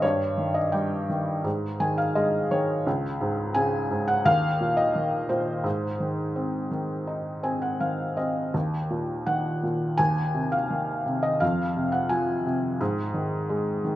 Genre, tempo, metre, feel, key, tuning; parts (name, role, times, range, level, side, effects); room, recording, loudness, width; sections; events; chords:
classical, lyrical solo piano; 85 BPM; 4/4; rubato; A4 = 440 Hz
felt-muted upright piano; solo; 0.0-14.0 s; Db2 to Ab5; -23 LUFS; equal
light reverb; close, detailed microphones; -24 LUFS; side -14 dB against mid
0.0-14.0 A section
felt piano fill 1.4-2.9, 7.1-8.5
0.0 Eb/G; 1.4 Ab5; 2.9 Db5; 4.3 Eb5; 5.6 Ab; 8.5 Ebm; 10.0 Ab6/Eb; 11.4 Fm; 12.8 Ab5